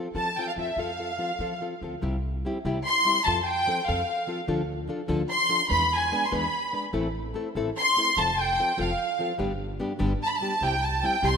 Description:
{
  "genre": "mexican folk, mariachi",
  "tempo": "98 BPM (dotted quarters)",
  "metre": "6/8",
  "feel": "rubato",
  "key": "C major",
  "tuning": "A4 = 441 Hz",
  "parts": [
    { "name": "nylon-string guitar", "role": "accompaniment", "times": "0.0-11.4 s", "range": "G2 to B4", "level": "-31 LUFS", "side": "left 2 dB", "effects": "none" },
    { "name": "upright bass", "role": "bass", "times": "0.1-11.4 s", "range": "F1 to F3", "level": "-32 LUFS", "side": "equal", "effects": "none" },
    { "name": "warm studio violin section", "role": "melody", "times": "0.2-11.4 s", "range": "E5 to C6", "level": "-24 LUFS", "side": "equal", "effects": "none" }
  ],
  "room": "wet lush hall reverb, RT60 2.3 s",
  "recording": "rough home demo mix, lossy compression artefacts",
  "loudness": "-24 LUFS",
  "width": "side -6 dB against mid",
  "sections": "0.0-2.0 A section; 2.0-11.4 B section",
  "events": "none",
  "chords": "0.0 F; 2.0 C; 3.3 F; 4.5 Dm; 5.7 E7; 6.9 Am; 8.2 F; 9.4 G; 10.6 C"
}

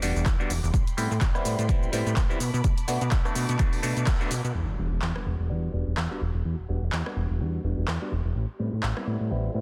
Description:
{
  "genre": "filtered disco house",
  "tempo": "126 BPM",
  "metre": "4/4",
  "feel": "swing 56% on 16ths",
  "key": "E minor",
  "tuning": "A4 = 440 Hz",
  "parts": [
    { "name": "bright clav", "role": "accompaniment", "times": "0.0-9.6 s", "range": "G3 to F#4", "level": "-35 LUFS", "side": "equal", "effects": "phaser, sidechain pumping, low-pass filter" },
    { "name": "muted chamber violin section", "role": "sustained chords", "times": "0.0-9.6 s", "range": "F#4 to D6", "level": "-44 LUFS", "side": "equal", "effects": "sidechain pumping, low-pass filter" },
    { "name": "plucky analog bass", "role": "bass", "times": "0.0-9.6 s", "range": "E1 to B2", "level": "-30 LUFS", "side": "equal", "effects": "sidechain pumping, low-pass filter" },
    { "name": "house drum kit", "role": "drums", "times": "0.0-9.1 s", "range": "handclaps, hi-hat, rim click, shaker", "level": "-37 LUFS", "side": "equal", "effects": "overdrive, sidechain pumping on hats, sidechain pumping on perc" },
    { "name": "electronic kick drum", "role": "drums", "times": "0.3-4.2 s", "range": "none", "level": "-27 LUFS", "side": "equal", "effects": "overdrive" },
    { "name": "impact", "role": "sound effects", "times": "4.5-6.5 s", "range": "none", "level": "-39 LUFS", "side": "equal", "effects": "none" }
  ],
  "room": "little or no reverb",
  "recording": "dense, heavily limited modern master",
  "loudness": "-27 LUFS",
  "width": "mono",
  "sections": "0.0-4.5 A section; 4.5-9.6 B section",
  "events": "band accent 4.1; impact 4.5-6.5; filter sweep 4.5-9.6",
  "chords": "0.0 Em9; 0.7 Am9; 2.4 Bm7; 4.5 Em9; 8.4 Am9"
}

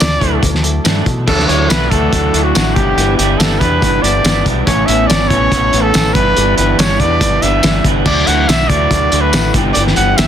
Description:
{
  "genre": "indie rock",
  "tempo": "142 BPM",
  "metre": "4/4",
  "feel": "straight",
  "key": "D major",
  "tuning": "A4 = 440 Hz",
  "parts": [
    { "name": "warm trumpet", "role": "melody", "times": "0.0-10.3 s", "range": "F#4 to F#5", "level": "-16 LUFS", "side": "equal", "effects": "plate reverb, analog delay" },
    { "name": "overdriven combo organ", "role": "sustained chords", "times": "0.0-10.3 s", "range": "D3 to D6", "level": "-30 LUFS", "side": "right 2 dB", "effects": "none" },
    { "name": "electric guitar through a small old amp", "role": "riff", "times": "0.0-10.3 s", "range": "E3 to G4", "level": "-20 LUFS", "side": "left 7 dB", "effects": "none" },
    { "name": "electric guitar through a small old amp", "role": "riff", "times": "0.0-10.3 s", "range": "G2 to E4", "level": "-19 LUFS", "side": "right 11 dB", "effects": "wide subtle chorus, analog delay" },
    { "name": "growling fingered electric bass", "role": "bass", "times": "0.0-10.3 s", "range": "G1 to B2", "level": "-17 LUFS", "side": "equal", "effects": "overdrive" },
    { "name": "cloth-damped thuddy drum kit", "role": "drums", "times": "0.0-10.3 s", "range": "crash cymbal, hi-hat, kick drum, snare drum, tambourine", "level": "-15 LUFS", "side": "equal", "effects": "soft clipping on kick" }
  ],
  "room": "light reverb",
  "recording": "dense, heavily limited modern master",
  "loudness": "-10 LUFS",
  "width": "side -9 dB against mid",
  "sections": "0.0-1.3 A section; 1.3-10.3 B section",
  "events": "trumpet solo 0.0-1.3",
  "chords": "0.0 Dadd9; 2.8 G6; 4.7 Aadd9; 6.2 G6; 8.1 Dadd9; 9.5 G6"
}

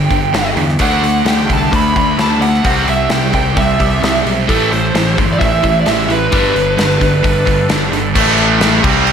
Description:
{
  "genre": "hard rock",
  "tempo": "130 BPM",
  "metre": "4/4",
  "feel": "straight",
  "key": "A minor",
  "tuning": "A4 = 440 Hz",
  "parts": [
    { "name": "bluesy overdriven lead guitar", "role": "melody", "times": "0.0-7.7 s", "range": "A4 to B5", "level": "-17 LUFS", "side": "right 2 dB", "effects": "distortion, slapback echo, analog delay" },
    { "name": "crunchy overdriven guitar", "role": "riff", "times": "0.0-9.1 s", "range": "G2 to D4", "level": "-19 LUFS", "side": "left 8 dB", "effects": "phaser" },
    { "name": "heavy high-gain guitar", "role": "riff", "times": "0.0-9.1 s", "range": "G2 to D4", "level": "-17 LUFS", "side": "right 7 dB", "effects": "distortion, slapback echo" },
    { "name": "modern bright picked electric bass", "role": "bass", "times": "0.0-9.1 s", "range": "G1 to E2", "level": "-19 LUFS", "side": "left 1 dB", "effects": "none" },
    { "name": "gated 80s drum kit", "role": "drums", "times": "0.1-9.1 s", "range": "crash cymbal, hi-hat, kick drum, snare drum", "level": "-17 LUFS", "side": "left 1 dB", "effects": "none" },
    { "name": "phased analog pad", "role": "sustained chords", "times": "1.3-9.1 s", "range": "G3 to E5", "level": "-26 LUFS", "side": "equal", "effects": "phaser, chorus" }
  ],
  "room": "moderate lush hall reverb, RT60 1.6 s, small room reverb",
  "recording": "big arena sound",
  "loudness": "-11 LUFS",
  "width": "side -7 dB against mid",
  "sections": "0.0-8.2 A section",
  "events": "none",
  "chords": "0.0 G5; 0.8 D; 2.6 C; 4.5 Am; 6.3 G; 8.2 A5"
}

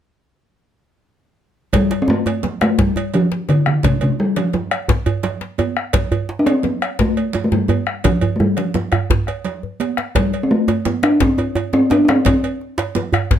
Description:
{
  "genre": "west african traditional, West African drum ensemble",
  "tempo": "114 BPM (dotted quarters)",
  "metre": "12/8",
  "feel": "straight",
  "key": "F major pentatonic",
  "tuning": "A4 = 441 Hz",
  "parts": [
    { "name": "bombo", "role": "percussion", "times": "1.7-13.4 s", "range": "none", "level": "-21 LUFS", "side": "equal", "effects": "none" },
    { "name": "congas", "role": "percussion", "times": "1.7-13.2 s", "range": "none", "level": "-26 LUFS", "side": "right 6 dB", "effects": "none" },
    { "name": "cowbell", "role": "percussion", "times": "1.7-13.3 s", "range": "none", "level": "-26 LUFS", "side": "right 8 dB", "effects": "none" },
    { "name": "djembe", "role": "percussion", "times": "1.7-13.4 s", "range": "none", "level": "-23 LUFS", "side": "left 7 dB", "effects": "none" },
    { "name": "talking drum", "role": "melody", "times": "1.8-12.8 s", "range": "C3 to D4", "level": "-16 LUFS", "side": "left 1 dB", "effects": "plate reverb" },
    { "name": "djembe", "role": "percussion", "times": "1.9-13.3 s", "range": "none", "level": "-22 LUFS", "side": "right 3 dB", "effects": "none" }
  ],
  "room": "light reverb",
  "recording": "none",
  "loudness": "-15 LUFS",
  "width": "side -10 dB against mid",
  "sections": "1.7-13.4 A section",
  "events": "drum fill 9.6-10.2",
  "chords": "none"
}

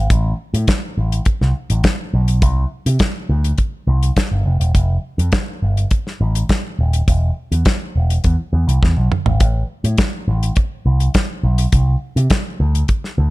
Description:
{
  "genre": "disco",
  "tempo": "103 BPM",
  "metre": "4/4",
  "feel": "straight",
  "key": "A minor",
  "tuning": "A4 = 440 Hz",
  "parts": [
    { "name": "picked electric bass with an envelope filter", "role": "bass", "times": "0.0-13.3 s", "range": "D#1 to C3", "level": "-15 LUFS", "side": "equal", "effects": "none" },
    { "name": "damped 70s drum kit", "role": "drums", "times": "0.1-13.1 s", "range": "hi-hat, kick drum, snare drum, toms", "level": "-17 LUFS", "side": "equal", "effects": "none" }
  ],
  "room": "little or no reverb",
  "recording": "none",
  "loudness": "-15 LUFS",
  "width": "side -20 dB against mid",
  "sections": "0.1-13.3 A section",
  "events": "drum fill 8.8-9.4",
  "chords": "none"
}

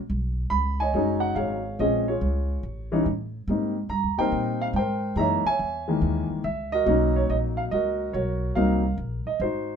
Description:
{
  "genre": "jazz piano trio",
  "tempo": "142 BPM",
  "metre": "4/4",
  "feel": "swing 66% on 8ths",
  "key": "unclear",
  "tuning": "A4 = 440 Hz",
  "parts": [
    { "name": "upright bass", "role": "bass", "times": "0.1-9.8 s", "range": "F#1 to Bb2", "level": "-28 LUFS", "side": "right 1 dB", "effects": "none" },
    { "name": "dark baby grand piano", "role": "melody", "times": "0.5-9.8 s", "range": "Eb3 to B5", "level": "-24 LUFS", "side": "equal", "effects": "none" }
  ],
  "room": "moderate club reverb, RT60 0.5 s",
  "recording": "minimal, uncompressed stereo recording",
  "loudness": "-23 LUFS",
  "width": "side -7 dB against mid",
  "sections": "0.0-9.8 A section",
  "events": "none",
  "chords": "0.1 B69; 1.8 Bbm7; 2.6 A; 3.5 Abmaj9; 5.2 Gb13; 6.9 Bmaj9; 8.6 Cm7b5"
}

